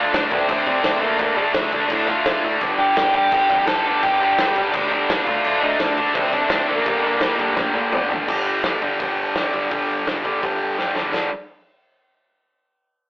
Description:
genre	punk rock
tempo	169 BPM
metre	4/4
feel	straight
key	G minor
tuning	A4 = 439 Hz
part	dark smooth lead guitar	melody	0.0-7.9 s	A3 to A5	-21 LUFS	equal	overdrive
part	overdriven electric guitar	riff	0.0-11.3 s	G2 to D4	-20 LUFS	equal	none
part	growling picked electric bass	bass	0.0-11.3 s	F1 to C3	-34 LUFS	equal	overdrive
part	loose indie drum kit	drums	0.1-11.2 s	crash cymbal, hi-hat, kick drum, snare drum, splash cymbal, toms	-24 LUFS	equal	none
room	light reverb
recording	rough rehearsal-room recording, tube saturation, telephone sound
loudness	-17 LUFS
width	side -22 dB against mid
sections	0.0-8.3 A section; 8.3-11.1 B section; 11.1-12.6 C section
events	drum fill 7.6-8.3, 10.8-11.1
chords	0.0 Dm; 2.6 G5; 5.3 Dm; 6.9 Gm; 8.3 G5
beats	0.13 0.49 0.84 | 1.19 1.55 1.90 2.25 | 2.61 2.96 3.31 3.67 | 4.02 4.38 4.73 5.09 | 5.44 5.79 6.15 6.50 | 6.86 7.21 7.57 7.93 | 8.28 8.64 9.00 9.35 | 9.71 10.07 10.43 10.78 | 11.14

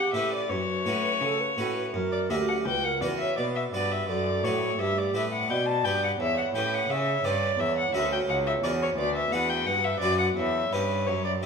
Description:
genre	classical, baroque-style sonata movement with continuo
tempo	85 BPM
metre	4/4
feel	straight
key	B minor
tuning	A4 = 440 Hz
part	dark violin	melody	0.0-11.5 s	B4 to A5	-28 LUFS	left 4 dB	none
part	mellow baroque flute	second line	0.0-11.5 s	G4 to D5	-31 LUFS	right 5 dB	none
part	harpsichord	accompaniment	0.0-11.5 s	C#2 to C#5	-31 LUFS	left 1 dB	none
part	rich cello	bass	0.0-11.5 s	C#2 to C#3	-33 LUFS	right 1 dB	none
room	wet recital hall reverb, RT60 1.6 s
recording	minimal, uncompressed stereo recording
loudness	-24 LUFS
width	side -5 dB against mid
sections	0.0-11.5 A section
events	none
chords	0.5 F#sus4; 1.9 F#; 3.4 B5; 4.8 G; 6.2 C#m7b5/E; 7.6 F#7; 9.0 Bm/D; 10.4 C#dim/E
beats	| 0.50 1.22 1.94 2.66 | 3.38 4.09 4.79 5.49 | 6.19 6.89 7.58 8.28 | 8.97 9.66 10.36 11.07

